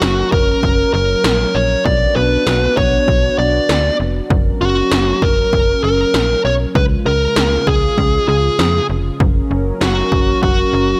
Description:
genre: synth-pop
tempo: 98 BPM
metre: 4/4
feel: straight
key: F# major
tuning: A4 = 440 Hz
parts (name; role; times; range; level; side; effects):
- smooth overdriven lead guitar; melody; 0.0-11.0 s; F#4 to D5; -18 LUFS; equal; slapback echo
- chorused pulse-width pad; sustained chords; 0.0-11.0 s; C#3 to A#4; -24 LUFS; equal; none
- slap-like FM bass; bass; 0.0-10.9 s; E#1 to E#2; -21 LUFS; equal; none
- 80s electronic pad drums; drums; 0.0-10.6 s; kick drum, snare drum; -20 LUFS; equal; none
room: light reverb, digital ambience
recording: none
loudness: -15 LUFS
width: mono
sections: 0.0-11.0 A section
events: none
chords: 0.0 F#; 1.9 Bm; 4.3 F#; 6.8 C#; 9.2 F#

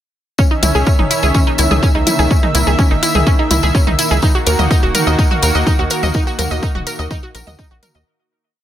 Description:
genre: melodic techno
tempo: 125 BPM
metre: 4/4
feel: straight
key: Eb phrygian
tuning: A4 = 441 Hz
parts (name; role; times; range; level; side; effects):
- lush unison pad; sustained chords; 0.4-8.0 s; Eb3 to Fb5; -20 LUFS; equal; chorus, sidechain pumping
- wide unison pluck; arpeggios; 0.4-8.0 s; Db4 to Eb5; -19 LUFS; right 1 dB; sidechain pumping, dub echo
- bowed-like drone; drone; 1.1-8.1 s; Eb3 to Bb3; -27 LUFS; right 1 dB; none
- electronic kick drum; drums; 0.4-7.7 s; none; -14 LUFS; equal; overdrive
- tambourine; percussion; 0.4-8.0 s; none; -24 LUFS; left 3 dB; none
- tight sequencer bass; bass; 0.6-8.0 s; Eb1 to Eb2; -17 LUFS; equal; sidechain pumping
- house drum kit; drums; 0.6-7.9 s; hi-hat, toms; -22 LUFS; equal; overdrive
room: digital ambience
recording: none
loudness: -12 LUFS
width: side -11 dB against mid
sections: 0.4-8.1 drop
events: drop 0.4-8.1; fade-out 5.5-8.1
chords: 0.4 Dbmadd9; 4.2 Ebm

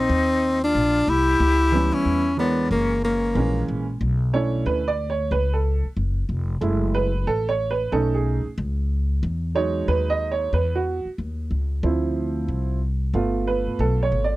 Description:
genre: hip hop, jazz-hop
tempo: 92 BPM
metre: 4/4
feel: swing 60% on 16ths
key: unclear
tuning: A4 = 443 Hz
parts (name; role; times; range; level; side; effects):
- warm tenor saxophone; melody; 0.0-3.7 s; A#3 to E4; -20 LUFS; left 1 dB; none
- breathy jazz flute; second line; 0.0-3.6 s; C#4 to G4; -28 LUFS; left 6 dB; none
- upright bass; bass; 0.0-14.4 s; E#1 to E2; -23 LUFS; left 1 dB; none
- warm upright piano; accompaniment; 1.7-14.4 s; E3 to D#5; -24 LUFS; right 4 dB; none
room: little or no reverb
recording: dry, close 1970s-style studio recording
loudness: -20 LUFS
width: side -18 dB against mid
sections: 0.0-4.0 A section; 4.0-14.4 B section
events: upright piano solo 4.0-14.4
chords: 0.0 G#69 (rootless); 1.4 C#m7b5; 2.7 F#7; 4.0 Bm11; 6.6 F#m7; 7.9 B7; 9.2 Emaj9; 11.8 Dm7; 13.1 G9

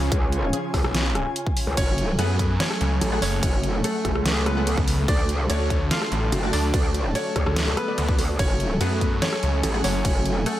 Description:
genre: heavy wobble dubstep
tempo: 145 BPM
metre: 4/4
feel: half-time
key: F# harmonic minor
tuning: A4 = 439 Hz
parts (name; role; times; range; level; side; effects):
- rich studio string section; sustained chords; 0.0-10.6 s; C#3 to G#5; -32 LUFS; equal; sidechain pumping, low-pass filter
- orchestra-hit-like synth stab; stabs; 0.0-10.5 s; E#3 to F#5; -33 LUFS; left 2 dB; built-in reverb, phaser, dub echo
- snarling distorted saw bass; bass; 0.0-10.0 s; F#1 to F#2; -24 LUFS; equal; overdrive
- airy breathy pad; texture; 0.0-10.6 s; A3 to A5; -32 LUFS; right 1 dB; chorus, sidechain pumping
- metallic wobble bass; bass; 0.1-10.4 s; F#1 to D2; -24 LUFS; equal; distortion, chorus, overdrive
- dubstep drum kit; drums; 0.1-10.5 s; crash cymbal, hi-hat, rim click, snare drum; -29 LUFS; equal; overdrive
- electronic kick drum; drums; 0.1-10.1 s; none; -24 LUFS; equal; none
- bright concert grand piano; melody; 1.8-10.6 s; A3 to E#5; -30 LUFS; left 1 dB; dub echo
room: little or no reverb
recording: none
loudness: -20 LUFS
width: side -13 dB against mid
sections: 0.0-10.6 A section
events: none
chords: 0.0 C#; 1.8 F#madd9; 5.1 D; 8.4 F#madd9

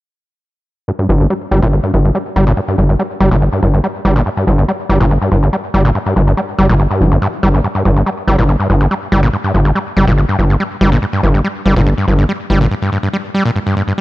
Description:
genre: techno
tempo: 142 BPM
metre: 4/4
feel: straight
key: G minor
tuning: A4 = 439 Hz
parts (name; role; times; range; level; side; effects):
- overdriven acid bass; riff; 0.9-14.0 s; F2 to G3; -14 LUFS; equal; distortion, ping-pong delay
- gritty driven synth bass; bass; 1.1-12.7 s; G1; -11 LUFS; equal; none
room: light reverb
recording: nothing above 10.9 kHz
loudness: -11 LUFS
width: side -18 dB against mid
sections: 0.9-14.0 A section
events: filter sweep on analog synth bass 0.9-14.0; filter sweep on acid bass 0.9-14.0; break 12.7-14.0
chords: none

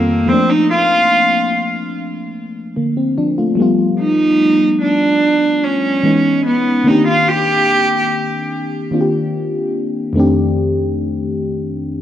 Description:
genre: R&B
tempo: 73 BPM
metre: 4/4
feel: straight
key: Bb major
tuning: A4 = 440 Hz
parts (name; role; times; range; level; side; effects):
- rich cello; melody; 0.0-8.5 s; Bb3 to G4; -13 LUFS; right 2 dB; ping-pong delay
- mellow FM electric piano; accompaniment; 0.0-12.0 s; F2 to A4; -16 LUFS; left 2 dB; chorus
room: moderate lush hall reverb, RT60 2.1 s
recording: worn, warbling old tape, cassette tape, warbly pitch drift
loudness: -13 LUFS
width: side -11 dB against mid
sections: 0.0-12.0 A section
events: none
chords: 0.3 Bbmaj9; 3.6 G7; 6.0 Dbm9; 6.9 Cm9; 10.2 F13

